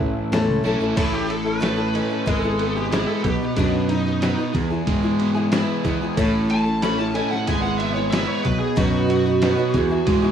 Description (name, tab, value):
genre	folk rock and heartland rock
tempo	92 BPM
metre	4/4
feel	straight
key	E major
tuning	A4 = 440 Hz
part	bluesy overdriven lead guitar	melody	0.0-10.3 s	D4 to B5	-25 LUFS	right 3 dB	distortion
part	dark concert grand piano	accompaniment	0.0-10.3 s	G#3 to B5	-34 LUFS	right 2 dB	none
part	picked steel-string acoustic guitar	accompaniment	0.0-10.3 s	G#2 to B4	-26 LUFS	left 5 dB	none
part	crunchy overdriven guitar	riff	0.0-10.3 s	E2 to E4	-24 LUFS	right 1 dB	none
part	fingered electric bass	bass	0.0-10.3 s	G#1 to E3	-25 LUFS	right 1 dB	none
part	lo-fi sampler-style drum kit	drums	0.0-10.2 s	crash cymbal, hi-hat, kick drum, ride cymbal, snare drum	-27 LUFS	equal	none
room	little or no reverb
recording	rough home demo mix, studio ambience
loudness	-18 LUFS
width	side -8 dB against mid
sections	1.0-10.3 A section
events	lead electric guitar solo 1.0-10.3; grand piano fill 4.9-6.2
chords	0.0 A; 2.3 E/G#; 3.3 B; 4.6 E; 6.2 A; 7.5 E/G#; 8.4 B; 9.7 E